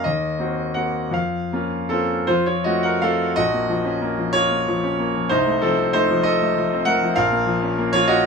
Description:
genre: classical, romantic character piece for solo piano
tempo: 51-66 BPM (dotted quarters)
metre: 6/8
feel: rubato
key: Bb minor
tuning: A4 = 440 Hz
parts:
  - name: bright concert grand piano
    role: solo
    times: 0.0-8.3 s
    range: Bb1 to Gb5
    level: -18 LUFS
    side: equal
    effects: none
room: little or no reverb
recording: close, detailed microphones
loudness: -18 LUFS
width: side -5 dB against mid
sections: 0.0-3.4 A section; 3.4-8.3 B section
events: none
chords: 0.0 Cm7b5/Eb; 1.1 Bbm/F; 2.3 F; 3.4 Bbm; 5.3 F7/C; 7.2 Bbm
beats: 0.04 | 1.14 2.28 | 3.37 4.33 | 5.28 6.23 | 7.16 8.08

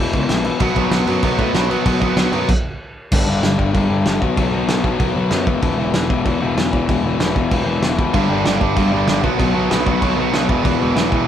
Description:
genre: punk rock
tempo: 191 BPM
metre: 4/4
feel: straight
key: unclear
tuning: A4 = 439 Hz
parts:
  - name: crunchy overdriven guitar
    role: riff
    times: 0.0-11.3 s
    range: E2 to B3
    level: -19 LUFS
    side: left 5 dB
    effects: none
  - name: fuzz picked electric bass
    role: bass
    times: 0.0-11.3 s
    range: E1 to A2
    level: -22 LUFS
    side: right 1 dB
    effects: overdrive
  - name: loose indie drum kit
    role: drums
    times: 0.1-11.2 s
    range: crash cymbal, kick drum, snare drum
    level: -20 LUFS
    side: right 1 dB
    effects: none
  - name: tight distorted guitar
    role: riff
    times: 0.6-2.5, 8.1-11.3 s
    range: E2 to B3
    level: -20 LUFS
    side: right 8 dB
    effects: distortion
room: light reverb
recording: band playing live in one room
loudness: -15 LUFS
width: side -10 dB against mid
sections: 0.0-3.1 A section; 3.1-11.3 B section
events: stop 2.5-3.1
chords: 0.0 E5; 0.6 B5; 3.1 G5; 4.2 B5; 5.5 E5; 8.1 G5; 9.2 B5; 10.5 E5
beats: 0.29 | 0.60 0.92 1.23 1.55 | 1.86 2.18 2.49 2.81 | 3.12 3.43 3.75 4.06 | 4.38 4.69 5.00 5.32 | 5.63 5.94 6.26 6.57 | 6.88 7.20 7.51 7.83 | 8.14 8.45 8.77 9.08 | 9.39 9.71 10.02 10.33 | 10.65 10.96 11.27

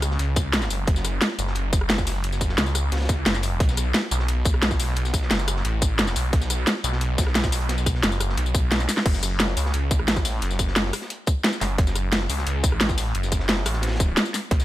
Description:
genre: dark technical drum and bass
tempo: 176 BPM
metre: 4/4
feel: straight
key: F# minor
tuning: A4 = 440 Hz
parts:
  - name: snarling distorted saw bass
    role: bass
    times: 0.0-14.6 s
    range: F#1 to C#2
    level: -24 LUFS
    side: equal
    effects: distortion
  - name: crunchy breakbeat drum kit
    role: drums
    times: 0.0-14.6 s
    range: hi-hat, snare drum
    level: -36 LUFS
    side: equal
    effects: none
  - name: drum and bass drum kit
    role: drums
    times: 0.0-14.6 s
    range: crash cymbal, hi-hat, rim click, snare drum, tambourine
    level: -24 LUFS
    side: equal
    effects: overdrive, small room reverb
  - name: electronic kick drum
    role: drums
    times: 0.4-14.6 s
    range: none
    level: -22 LUFS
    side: equal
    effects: overdrive, small room reverb
room: studio reverb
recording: none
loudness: -20 LUFS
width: side -15 dB against mid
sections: 0.0-9.1 A section; 9.1-14.6 A section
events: drop 0.0-9.1, 9.1-14.6; drum fill 8.9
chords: none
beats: 0.19 0.53 | 0.88 1.22 1.56 1.90 | 2.24 2.58 2.92 3.26 | 3.60 3.94 4.28 4.62 | 4.97 5.31 5.65 5.99 | 6.33 6.67 7.01 7.35 | 7.69 8.03 8.38 8.72 | 9.06 9.40 9.74 10.08 | 10.42 10.76 11.10 11.44 | 11.78 12.12 12.47 12.81 | 13.15 13.49 13.83 14.17 | 14.51

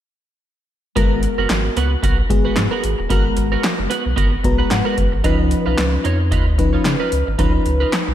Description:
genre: early-eighties boogie funk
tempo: 112 BPM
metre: 4/4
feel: swing 56% on 16ths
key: G# dorian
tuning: A4 = 438 Hz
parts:
  - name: FM electric piano with soft pad layer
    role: accompaniment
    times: 1.0-8.1 s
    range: E#3 to A#5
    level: -21 LUFS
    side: left 2 dB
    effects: chorus
  - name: twelve-string electric guitar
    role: riff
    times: 1.0-8.1 s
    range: B3 to C#5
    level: -24 LUFS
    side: right 5 dB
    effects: analog chorus, slapback echo
  - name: warm sub bass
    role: bass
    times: 1.0-8.1 s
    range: D#1 to C#3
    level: -20 LUFS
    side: equal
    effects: none
  - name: electro analog drum machine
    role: drums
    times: 1.0-8.1 s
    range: handclaps, hi-hat, kick drum, snare drum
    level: -20 LUFS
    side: equal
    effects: none
room: moderate lush hall reverb, RT60 2.1 s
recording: big arena sound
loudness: -15 LUFS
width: side -11 dB against mid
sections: 1.0-8.1 A section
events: FM electric piano fill 4.2-5.2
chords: 1.0 G#m9; 5.2 C#9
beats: | 0.96 1.50 2.04 2.57 | 3.11 3.64 4.18 4.71 | 5.25 5.79 6.32 6.86 | 7.39 7.93

